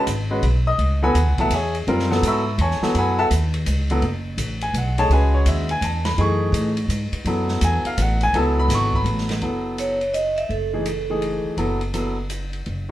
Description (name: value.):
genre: modal jazz.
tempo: 167 BPM.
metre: 3/4.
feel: swing 64% on 8ths.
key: F# dorian.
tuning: A4 = 440 Hz.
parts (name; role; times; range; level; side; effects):
clear baby grand piano; accompaniment; 0.0-12.9 s; E3 to E6; -22 LUFS; left 1 dB; none.
upright bass; bass; 0.1-12.9 s; F#1 to A2; -22 LUFS; equal; none.
open jazz drum kit; drums; 0.1-12.8 s; hi-hat, kick drum, ride cymbal, snare drum; -30 LUFS; equal; none.
vibraphone with medium hard mallets; melody; 9.8-11.2 s; A4 to E5; -23 LUFS; right 3 dB; plate reverb.
room: moderate studio reverb, RT60 0.7 s.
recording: heard from further back in the room.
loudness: -18 LUFS.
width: side -14 dB against mid.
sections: 0.0-9.4 A section; 9.4-12.9 B section.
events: none.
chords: 0.0 F#m11.